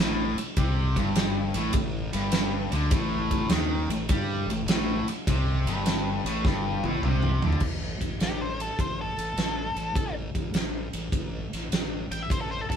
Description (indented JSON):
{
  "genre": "blues rock power trio and southern rock",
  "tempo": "102 BPM",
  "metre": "4/4",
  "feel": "swing 67% on 8ths",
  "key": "unclear",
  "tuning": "A4 = 441 Hz",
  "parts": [
    { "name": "biting overdriven guitar", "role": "riff", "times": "0.0-7.6 s", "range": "G2 to G3", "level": "-28 LUFS", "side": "equal", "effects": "none" },
    { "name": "fuzz fingered electric bass", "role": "bass", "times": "0.0-12.8 s", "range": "G1 to G2", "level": "-30 LUFS", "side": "equal", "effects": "overdrive" },
    { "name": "big rock drum kit", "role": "drums", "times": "0.4-12.8 s", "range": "crash cymbal, kick drum, ride cymbal, snare drum, toms", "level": "-28 LUFS", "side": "equal", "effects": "none" },
    { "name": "octave-fuzz lead guitar", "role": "melody", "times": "8.2-12.8 s", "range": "G4 to G5", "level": "-31 LUFS", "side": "left 2 dB", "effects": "distortion" }
  ],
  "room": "moderate studio reverb, RT60 0.6 s",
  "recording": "band playing live in one room",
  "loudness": "-24 LUFS",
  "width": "side -8 dB against mid",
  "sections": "0.0-7.6 A section; 7.6-12.8 B section",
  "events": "drum fill 6.4-7.6; lead electric guitar solo 7.6-12.8",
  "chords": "0.0 Gsus24; 7.6 N.C."
}